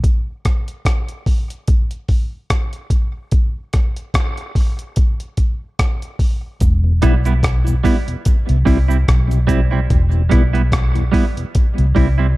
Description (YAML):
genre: dub reggae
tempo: 73 BPM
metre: 4/4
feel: swing 57% on 16ths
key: E minor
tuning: A4 = 440 Hz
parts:
  - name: breakbeat sampler-style drum kit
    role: drums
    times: 0.0-12.2 s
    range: hi-hat, kick drum, rim click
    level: -16 LUFS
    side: equal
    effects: none
  - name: vintage muted fingered electric bass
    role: bass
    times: 6.6-12.3 s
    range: E1 to C2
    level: -15 LUFS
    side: equal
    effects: none
  - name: cabasa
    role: percussion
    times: 6.6-9.7 s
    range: none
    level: -42 LUFS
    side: right 4 dB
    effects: tape echo
  - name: mellow tonewheel organ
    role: accompaniment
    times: 6.8-12.1 s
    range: E2 to E4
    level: -23 LUFS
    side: left 2 dB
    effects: slow rotary speaker, tape echo
  - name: clean electric guitar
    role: accompaniment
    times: 7.0-12.3 s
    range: G3 to E4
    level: -22 LUFS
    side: right 7 dB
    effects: tape echo
room: digital ambience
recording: dark, warm production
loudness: -14 LUFS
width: side -19 dB against mid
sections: 0.0-12.4 A section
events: break 0.0-6.6; part muted 9.9-12.4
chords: 0.0 N.C.; 6.6 Em; 8.3 C; 9.9 Em; 11.5 C